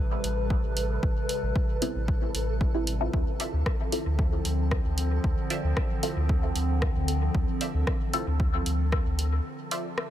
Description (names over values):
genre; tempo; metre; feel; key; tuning
dub techno; 114 BPM; 4/4; straight; unclear; A4 = 442 Hz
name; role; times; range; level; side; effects
warbly tape-like pad; sustained chords; 0.0-10.1 s; C3 to B4; -33 LUFS; equal; chorus, built-in reverb, phaser, sidechain pumping
filtered dub chord stab; stabs; 0.0-8.5 s; G3 to A4; -35 LUFS; left 1 dB; phaser, sidechain pumping, dub echo
pure sine sub bass; bass; 0.0-9.4 s; A1 to D2; -28 LUFS; equal; tube saturation, sidechain pumping
flickering grainy texture; texture; 0.0-10.1 s; A4; -41 LUFS; right 3 dB; built-in reverb, sidechain pumping
punchy analog drum machine; drums; 0.2-10.1 s; hi-hat, rim click; -34 LUFS; equal; overdrive, dub echo
electronic kick drum; drums; 0.5-9.0 s; none; -28 LUFS; equal; overdrive
filtered dub chord stab; riff; 3.4-9.9 s; F4 to E5; -38 LUFS; right 2 dB; phaser, sidechain pumping, dub echo
room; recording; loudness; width
little or no reverb; none; -25 LUFS; side -12 dB against mid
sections
0.0-10.1 A section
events
break 9.5-10.1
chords
0.0 Am9; 3.1 Dm9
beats
0.50 | 1.03 1.56 2.08 2.61 | 3.13 3.66 4.19 4.71 | 5.24 5.77 6.29 6.82 | 7.35 7.87 8.40 8.93 | 9.45 9.98